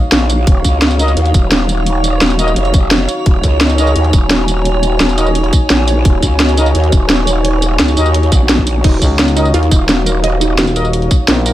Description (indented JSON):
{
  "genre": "dark technical drum and bass",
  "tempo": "172 BPM",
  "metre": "4/4",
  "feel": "straight",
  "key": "Eb minor",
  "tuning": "A4 = 445 Hz",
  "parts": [
    { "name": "dark analog pad", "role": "sustained chords", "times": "0.0-11.5 s", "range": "Eb4 to Ab5", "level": "-20 LUFS", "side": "left 1 dB", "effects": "chorus, sidechain pumping" },
    { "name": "granular cloud pad", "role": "texture", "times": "0.0-11.5 s", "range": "Db5", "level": "-22 LUFS", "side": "right 3 dB", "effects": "built-in reverb, sidechain pumping" },
    { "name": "growl bass", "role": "bass", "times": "0.1-10.6 s", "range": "Eb1 to Eb2", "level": "-14 LUFS", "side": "equal", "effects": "chorus, overdrive" },
    { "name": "drum and bass drum kit", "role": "drums", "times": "0.1-11.5 s", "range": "crash cymbal, hi-hat, snare drum, tambourine", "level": "-14 LUFS", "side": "equal", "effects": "studio reverb" },
    { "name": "electronic kick drum", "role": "drums", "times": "0.5-11.2 s", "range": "none", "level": "-11 LUFS", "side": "equal", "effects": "studio reverb" },
    { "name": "mellow brass ensemble", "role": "stabs", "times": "1.0-10.9 s", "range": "Eb4-23c to Eb5", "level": "-23 LUFS", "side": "left 1 dB", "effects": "dub echo" },
    { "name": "wide unison pluck", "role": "arpeggios", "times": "8.8-11.5 s", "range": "Eb4 to Eb5", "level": "-21 LUFS", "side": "right 3 dB", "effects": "sidechain pumping, dub echo" },
    { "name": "growling FM bass", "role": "bass", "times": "9.0-11.5 s", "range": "Eb1 to Db2", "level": "-14 LUFS", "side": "equal", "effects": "none" }
  ],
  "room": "little or no reverb",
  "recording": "none",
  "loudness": "-10 LUFS",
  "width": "side -14 dB against mid",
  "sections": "0.0-11.5 A section",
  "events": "none",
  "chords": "0.0 Ebmadd9"
}